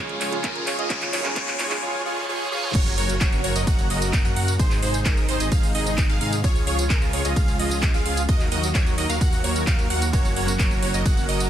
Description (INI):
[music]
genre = EDM, festival progressive house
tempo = 130 BPM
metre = 4/4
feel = straight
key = unclear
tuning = A4 = 440 Hz
[part]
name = bright baby grand piano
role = accompaniment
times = 0.0-2.8, 10.1-11.5 s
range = Db3 to Ab4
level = -32 LUFS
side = right 3 dB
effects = sidechain pumping, digital delay
[part]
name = lush unison pad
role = sustained chords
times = 0.0-11.5 s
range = C3 to Gb4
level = -32 LUFS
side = equal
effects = chorus, sidechain pumping
[part]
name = wide unison pluck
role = arpeggios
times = 0.0-11.5 s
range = Bb4 to Gb5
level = -30 LUFS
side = right 1 dB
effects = phaser, vintage 12-bit sampler grit, sidechain pumping, digital delay
[part]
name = dense compressed supersaw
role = riff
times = 0.0-11.5 s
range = Eb4 to Gb5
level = -28 LUFS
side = right 1 dB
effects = sidechain pumping, digital delay
[part]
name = wide detuned saw bass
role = bass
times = 0.0-11.5 s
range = Gb1 to Ab2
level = -27 LUFS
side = equal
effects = chorus, sidechain pumping
[part]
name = riser, reverse cymbal and downlifter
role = sound effects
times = 0.0-6.4 s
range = none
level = -32 LUFS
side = equal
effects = none
[part]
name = house drum kit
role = drums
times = 0.1-11.5 s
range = crash cymbal, handclaps, hi-hat, ride cymbal, tambourine, toms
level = -28 LUFS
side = right 1 dB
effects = high-pass filter on snare, high-pass filter on hats, high-pass filter on toms, high-pass filter on cymbals, high-pass filter on perc
[part]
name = electronic kick drum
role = drums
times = 0.4-11.1 s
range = none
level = -21 LUFS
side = equal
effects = none
[sound]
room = little or no reverb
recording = dense, heavily limited modern master, high-pass filter, lossy compression artefacts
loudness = -20 LUFS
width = side -11 dB against mid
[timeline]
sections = 0.0-2.7 A section; 2.7-11.5 B section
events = build-up 0.0-2.7; drum fill 0.0-1.8, 2.5; riser 0.0-1.8; reverse cymbal 1.8-2.7; drop 2.7-11.5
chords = 0.0 Db; 0.9 Ebm; 2.7 Gb; 4.6 Ab; 6.4 Db; 8.3 Ebm; 10.1 Gb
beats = 0.44 | 0.90 1.36 1.82 2.29 | 2.75 3.21 3.67 4.13 | 4.59 5.06 5.52 5.98 | 6.44 6.90 7.36 7.83 | 8.29 8.75 9.21 9.67 | 10.13 10.59 11.06